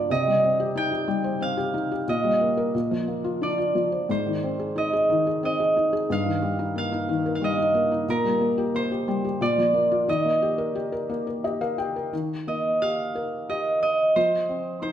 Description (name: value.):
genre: children's music, lullaby.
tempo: 90 BPM.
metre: 3/4.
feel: rubato.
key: Eb major.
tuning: A4 = 445 Hz.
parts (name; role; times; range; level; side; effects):
concert harp; melody; 0.0-14.9 s; Bb4 to G5; -24 LUFS; right 2 dB; none.
felt-muted upright piano; accompaniment; 0.0-14.9 s; G2 to G5; -26 LUFS; left 2 dB; none.
room: moderate scoring stage reverb, RT60 1.6 s.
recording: minimal, uncompressed stereo recording.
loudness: -22 LUFS.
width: side -10 dB against mid.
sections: 0.0-12.1 A section; 12.1-14.9 B section.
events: felt piano fill 11.1-12.1.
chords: 0.1 Cm; 2.1 Eb/Bb; 2.7 Bbadd9; 4.1 Ab; 6.1 Eb/G; 8.1 Gmadd11/Bb; 9.4 Bb; 10.1 Eb; 14.2 F7(no3).